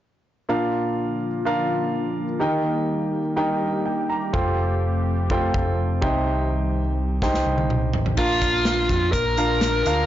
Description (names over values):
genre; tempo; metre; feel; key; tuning
piano-driven pop; 125 BPM; 4/4; straight; Bb major; A4 = 441 Hz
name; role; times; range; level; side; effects
clear baby grand piano; accompaniment; 0.5-10.1 s; Bb2 to Bb5; -24 LUFS; right 1 dB; none
sweeping resonant pad; sustained chords; 0.5-8.2 s; D3 to G4; -29 LUFS; left 1 dB; chorus
picked electric bass; bass; 4.3-10.1 s; F1 to F2; -24 LUFS; equal; none
modern studio drum kit; drums; 4.3-10.0 s; crash cymbal, hi-hat, kick drum, snare drum, toms; -26 LUFS; equal; none
bluesy overdriven lead guitar; melody; 8.2-10.1 s; F4 to Bb4; -21 LUFS; left 1 dB; distortion
room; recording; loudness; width
moderate studio reverb, RT60 0.8 s; blown-out, overdriven recording, overdrive, nothing above 7.5 kHz; -20 LUFS; side -12 dB against mid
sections
0.5-8.2 A section; 8.2-10.1 B section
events
grand piano fill 3.6-4.3; drum fill 7.2-8.2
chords
0.5 Bb; 2.4 Eb; 4.3 Fadd9; 6.0 Cm; 8.2 Bb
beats
| 0.48 0.96 1.45 1.93 | 2.41 2.89 3.37 3.85 | 4.33 4.81 5.29 5.78 | 6.26 6.74 7.22 7.70 | 8.18 8.66 9.14 9.62